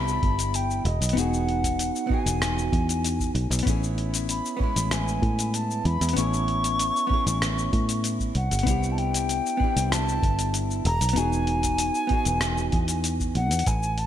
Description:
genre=sunset chillout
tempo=96 BPM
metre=4/4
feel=straight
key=unclear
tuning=A4 = 441 Hz
part: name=wooden flute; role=melody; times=0.0-14.1 s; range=D#5 to C#6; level=-28 LUFS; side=left 1 dB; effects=digital delay
part: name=vintage hollow-body jazz guitar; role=accompaniment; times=0.0-13.6 s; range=G#3 to G#4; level=-29 LUFS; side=moving between left 5 dB and right 2 dB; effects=auto-pan
part: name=fingered electric bass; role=bass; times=0.0-14.1 s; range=E1 to A2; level=-26 LUFS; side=equal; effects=none
part: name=dusty soul sampler-style drum kit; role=drums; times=0.1-14.1 s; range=hi-hat, rim click, shaker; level=-30 LUFS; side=left 2 dB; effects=gated reverb
part: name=electronic kick drum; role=drums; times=0.2-13.8 s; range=none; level=-27 LUFS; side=equal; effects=none
room=light reverb, digital ambience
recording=bright 1980s-style digital production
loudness=-22 LUFS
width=side -10 dB against mid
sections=0.0-13.7 A section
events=none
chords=0.0 Cmaj9; 0.9 Emaj9; 3.7 Amaj9; 8.4 Cmaj9; 10.9 Emaj9

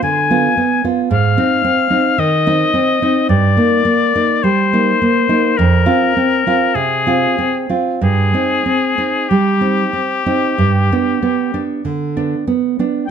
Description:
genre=romantic duo for oboe and classical guitar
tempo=47-57 BPM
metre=4/4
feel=rubato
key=unclear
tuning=A4 = 441 Hz
part: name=clear oboe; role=melody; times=0.0-13.1 s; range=G4 to Ab5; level=-16 LUFS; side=left 6 dB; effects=none
part: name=nylon-string guitar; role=accompaniment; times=0.0-13.1 s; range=F2 to F4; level=-14 LUFS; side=right 2 dB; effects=none
room=light reverb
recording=close, detailed microphones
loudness=-12 LUFS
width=side -8 dB against mid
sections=0.0-13.1 A section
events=none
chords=0.0 G7 (rootless); 1.1 Ab (rootless); 3.3 Eb/G; 5.6 F5; 8.0 Cm/G; 10.6 G

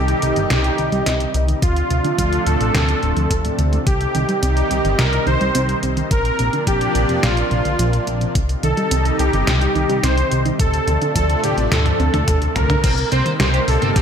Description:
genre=synthwave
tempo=107 BPM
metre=4/4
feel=straight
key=C dorian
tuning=A4 = 441 Hz
part: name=soft supersaw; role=melody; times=0.0-14.0 s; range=F4 to C5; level=-21 LUFS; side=equal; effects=ping-pong delay, shimmer reverb
part: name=lush unison pad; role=sustained chords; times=0.0-14.0 s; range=C3 to Eb4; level=-23 LUFS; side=equal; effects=chorus, phaser, sidechain pumping, shimmer reverb
part: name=soft round pluck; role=arpeggios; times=0.0-14.0 s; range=A2 to C4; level=-26 LUFS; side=right 2 dB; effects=chorus, ping-pong delay
part: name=chorused synth bass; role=bass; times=0.0-14.0 s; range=D1 to F2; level=-20 LUFS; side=equal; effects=tube saturation, sidechain pumping
part: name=detuned 8-bit digital drum machine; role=drums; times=0.1-14.0 s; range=crash cymbal, hi-hat, snare drum, toms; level=-23 LUFS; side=equal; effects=studio reverb, gated reverb
part: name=electronic kick drum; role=drums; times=1.6-14.0 s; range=none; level=-19 LUFS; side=equal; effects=overdrive, studio reverb
part: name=biting overdriven guitar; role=riff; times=12.8-14.0 s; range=C4 to C5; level=-26 LUFS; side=right 4 dB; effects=wide subtle chorus, ping-pong delay, shimmer reverb
room=light reverb, digital ambience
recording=none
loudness=-15 LUFS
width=side -8 dB against mid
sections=0.0-12.8 A section; 12.8-14.0 B section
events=filter sweep on synth arpeggio sound 0.0-12.8; drum fill 11.7-12.8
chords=0.0 Cm; 1.6 Dm7; 3.9 Cm; 6.1 Bbadd9; 8.4 Cm; 10.6 Dm7; 12.8 Cm7

